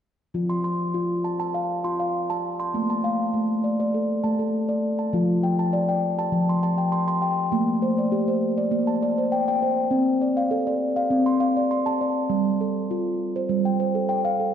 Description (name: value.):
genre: world meditative, meditative tuned percussion.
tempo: 100 BPM.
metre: 4/4.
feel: straight.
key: F major.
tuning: A4 = 440 Hz.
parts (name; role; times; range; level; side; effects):
steel tongue drum; solo; 0.3-14.5 s; F3 to C6; -21 LUFS; equal; diffuse ambient delay.
room: wet concert hall reverb, RT60 1.9 s, studio reverb.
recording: dark, warm production.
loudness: -21 LUFS.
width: side -9 dB against mid.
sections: 0.3-5.1 A section; 5.1-14.5 B section.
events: none.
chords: 0.3 F; 2.7 Bb; 5.1 F; 7.5 Bb; 9.9 F6/C; 12.3 G5.